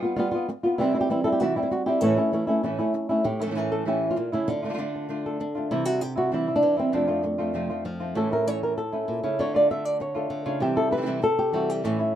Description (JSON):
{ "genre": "flamenco", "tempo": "196 BPM", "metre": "4/4", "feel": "straight", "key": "unclear", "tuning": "A4 = 441 Hz", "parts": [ { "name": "flamenco guitar", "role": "melody", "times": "0.0-12.2 s", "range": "F2 to E5", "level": "-24 LUFS", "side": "equal", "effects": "none" }, { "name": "flamenco guitar", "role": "stabs", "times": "0.0-12.1 s", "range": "F2 to F4", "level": "-28 LUFS", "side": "right 1 dB", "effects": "none" } ], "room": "light reverb", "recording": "minimal, uncompressed stereo recording", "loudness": "-23 LUFS", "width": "side -10 dB against mid", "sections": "0.0-3.2 A section; 3.2-12.2 B section", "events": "none", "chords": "0.0 G7; 0.8 C; 2.0 A; 4.5 Dm; 5.7 C; 6.9 F; 8.2 A; 9.4 Dm; 10.6 C" }